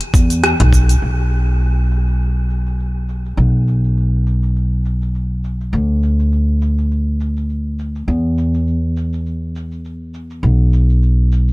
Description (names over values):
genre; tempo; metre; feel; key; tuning
organic downtempo; 102 BPM; 4/4; swing 56% on 16ths; unclear; A4 = 440 Hz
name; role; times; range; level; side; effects
organic electronic drum kit; drums; 0.0-11.5 s; cabasa, claves, hi-hat, rim click; -22 LUFS; equal; low-pass filter on perc, low-pass filter on hats, low-pass filter on snare, low-pass filter on room
upright bass; bass; 0.1-11.5 s; B1 to E2; -14 LUFS; equal; none
electronic kick drum; drums; 0.1-0.9 s; none; -14 LUFS; equal; none
room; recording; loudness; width
little or no reverb; none; -14 LUFS; side -21 dB against mid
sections
0.0-1.0 A section; 1.0-11.5 B section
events
none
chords
none